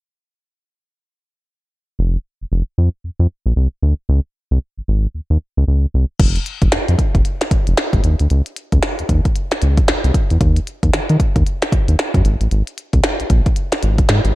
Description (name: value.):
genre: R&B, new jack swing.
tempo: 114 BPM.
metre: 4/4.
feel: swing 60% on 16ths.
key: unclear.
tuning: A4 = 440 Hz.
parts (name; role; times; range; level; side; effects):
round analog bass; bass; 2.0-14.3 s; F1 to Eb3; -14 LUFS; equal; none.
minimal click drum kit; drums; 6.2-14.3 s; crash cymbal, hi-hat, kick drum, snare drum; -16 LUFS; equal; none.
room: light reverb, digital ambience.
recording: none.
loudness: -15 LUFS.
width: side -18 dB against mid.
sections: 2.0-6.2 A section; 6.2-14.3 B section.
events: none.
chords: none.